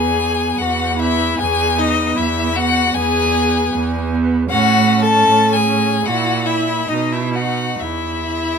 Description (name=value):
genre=classical, slow romantic movement for string quartet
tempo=63-79 BPM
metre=4/4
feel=rubato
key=E major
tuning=A4 = 440 Hz
part: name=clear violin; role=melody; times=0.0-8.6 s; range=D#5 to A5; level=-18 LUFS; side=left 5 dB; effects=none
part: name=rich violin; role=second line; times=0.0-8.6 s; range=D#4 to A4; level=-21 LUFS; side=left 3 dB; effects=none
part: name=warm viola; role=accompaniment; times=0.0-8.6 s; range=B3 to E4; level=-23 LUFS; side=right 3 dB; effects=none
part: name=clear cello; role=bass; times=0.0-8.6 s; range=E2 to B2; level=-20 LUFS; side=right 6 dB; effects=none
room=light reverb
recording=minimal, uncompressed stereo recording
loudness=-14 LUFS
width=side -6 dB against mid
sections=0.0-8.6 A section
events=none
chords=0.0 E; 4.5 F#madd9/A; 6.1 F#7/A#; 6.9 B; 7.8 N.C.